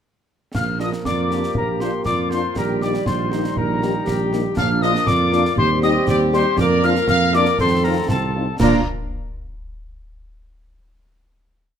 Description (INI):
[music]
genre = military-style march for wind band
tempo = 119 BPM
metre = 2/4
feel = straight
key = Bb major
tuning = A4 = 440 Hz
[part]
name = warm trumpet section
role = melody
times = 0.5-8.8 s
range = A4 to F5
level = -25 LUFS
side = equal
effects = none
[part]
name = dark tuba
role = bass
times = 0.5-8.8 s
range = Bb1 to Bb2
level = -22 LUFS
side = right 4 dB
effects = none
[part]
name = concert snare drum, clash cymbals and concert bass drum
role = drums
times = 0.5-8.9 s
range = none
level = -27 LUFS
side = equal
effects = none
[part]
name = piccolo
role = second line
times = 0.6-8.9 s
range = A5 to F6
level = -24 LUFS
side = left 5 dB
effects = none
[part]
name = bright trombone section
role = sustained chords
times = 0.6-8.8 s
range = Eb3 to D4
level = -26 LUFS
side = right 3 dB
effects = none
[part]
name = mellow French horn section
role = accompaniment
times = 0.8-8.8 s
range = G3 to G4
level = -25 LUFS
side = left 5 dB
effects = none
[part]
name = clear woodwind section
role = second line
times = 1.1-8.8 s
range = D4 to D5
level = -24 LUFS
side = left 2 dB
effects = none
[sound]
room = light reverb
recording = close, detailed microphones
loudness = -16 LUFS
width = side -8 dB against mid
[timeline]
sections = 0.5-8.6 A section; 8.6-9.6 final chord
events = none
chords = 0.5 Bb; 2.6 Eb/Bb; 4.6 Bb; 5.6 Cm/Eb; 6.6 Bb/F; 7.6 F7; 8.6 Bb